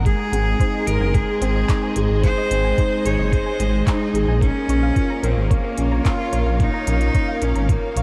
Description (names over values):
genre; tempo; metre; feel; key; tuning
piano and strings electronica; 110 BPM; 4/4; straight; unclear; A4 = 440 Hz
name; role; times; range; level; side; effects
rich studio string section; sustained chords; 0.0-8.0 s; Ab3 to Gb5; -32 LUFS; equal; sidechain pumping
felt-muted upright piano; riff; 0.0-8.0 s; Ab3 to F5; -27 LUFS; equal; delay
dark detuned saw bass; bass; 0.0-8.0 s; Gb1 to Bb1; -23 LUFS; equal; sidechain pumping
clear cello; melody; 0.1-8.0 s; Bb3 to Db5; -27 LUFS; equal; delay
electronic kick drum; drums; 0.1-7.8 s; none; -22 LUFS; equal; none
organic electronic drum kit; drums; 0.1-8.0 s; handclaps, hi-hat; -38 LUFS; equal; none
soft round pluck; arpeggios; 0.2-8.0 s; Ab4 to Bb5; -37 LUFS; equal; none
room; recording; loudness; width
moderate cathedral reverb, RT60 5.2 s; dreamy mix soaked in reverb; -20 LUFS; mono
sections
0.0-8.0 A section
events
none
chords
0.1 Ab; 4.4 Bbm